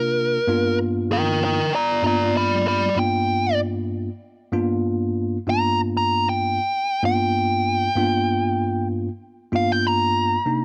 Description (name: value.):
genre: blues.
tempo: 96 BPM.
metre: 4/4.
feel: swing 54% on 16ths.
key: unclear.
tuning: A4 = 441 Hz.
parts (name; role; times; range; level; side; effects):
dark smooth lead guitar; melody; 0.0-10.6 s; Bb4 to B5; -23 LUFS; equal; overdrive.
bell-like tine electric piano; accompaniment; 0.0-10.6 s; G2 to F4; -25 LUFS; equal; none.
room: digital ambience.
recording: dry, close 1970s-style studio recording.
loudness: -22 LUFS.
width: mono.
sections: 0.0-10.6 A section.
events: lead electric guitar solo 0.0-10.6.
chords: 0.5 G7#9.